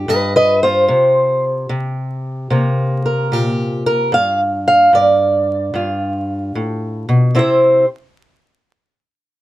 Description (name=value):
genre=acoustic country blues, solo or duo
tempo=74 BPM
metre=4/4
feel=swing 66% on 8ths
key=unclear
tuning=A4 = 441 Hz
part: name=fingerpicked old ladder-braced acoustic guitar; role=solo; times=0.0-7.9 s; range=G2 to F5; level=-13 LUFS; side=equal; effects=none
room=light reverb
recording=close, detailed microphones, vinyl crackle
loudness=-13 LUFS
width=side -15 dB against mid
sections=0.0-7.4 A section; 7.4-9.4 B section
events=steel-string acoustic guitar solo 0.0-7.4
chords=0.0 G7; 0.9 Bbsus2; 4.1 G7(no3); 7.4 C